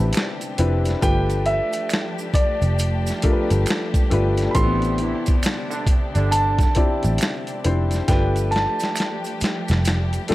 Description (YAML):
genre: R&B, neo-soul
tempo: 68 BPM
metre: 4/4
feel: swing 62% on 16ths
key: unclear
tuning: A4 = 440 Hz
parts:
  - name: dark grand piano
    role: melody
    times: 0.0-10.2 s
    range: D5 to C6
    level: -25 LUFS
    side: right 1 dB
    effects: none
  - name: warm upright piano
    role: accompaniment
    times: 0.0-10.3 s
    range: A3 to D5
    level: -26 LUFS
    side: left 3 dB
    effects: none
  - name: warm studio string section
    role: sustained chords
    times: 0.0-10.3 s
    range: C3 to G4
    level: -30 LUFS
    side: equal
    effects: none
  - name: vintage muted picked electric bass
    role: bass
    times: 0.0-10.3 s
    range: F1 to A1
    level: -20 LUFS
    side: equal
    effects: none
  - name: boom bap sampler-style drum kit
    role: drums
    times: 0.1-10.3 s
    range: hi-hat, kick drum, snare drum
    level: -22 LUFS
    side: equal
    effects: none
  - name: finger snaps and maracas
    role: percussion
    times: 0.1-10.3 s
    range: none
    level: -35 LUFS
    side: right 4 dB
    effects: none
  - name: bright trombone section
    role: stabs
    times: 5.0-6.7 s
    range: D3 to E4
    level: -29 LUFS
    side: right 4 dB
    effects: none
room: light reverb, studio reverb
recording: none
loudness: -18 LUFS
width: side -17 dB against mid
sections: 0.0-10.3 A section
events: drum fill 8.1-10.3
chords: 0.0 Am11; 1.0 G9; 4.6 Am11; 8.1 G9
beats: 0.14 | 1.02 1.91 2.79 3.67 | 4.55 5.44 6.32 7.20 | 8.08 8.96 9.85